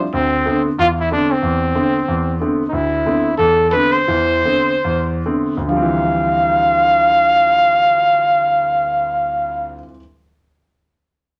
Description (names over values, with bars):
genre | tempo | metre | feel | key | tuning
jazz | 129-185 BPM | 4/4 | swing 61% on 8ths | D dorian | A4 = 440 Hz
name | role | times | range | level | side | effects
warm concert grand piano | accompaniment | 0.0-10.0 s | D2 to C4 | -22 LUFS | equal | none
breathy trumpet | melody | 0.1-9.8 s | C4 to F5 | -17 LUFS | equal | none
room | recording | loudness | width
moderate studio reverb, RT60 0.6 s | none | -16 LUFS | mono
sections
0.0-2.7 A section; 2.7-5.7 B section; 5.7-9.4 C section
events
slowing down 2.7-5.7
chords
0.1 Amadd9/D; 5.7 Dm11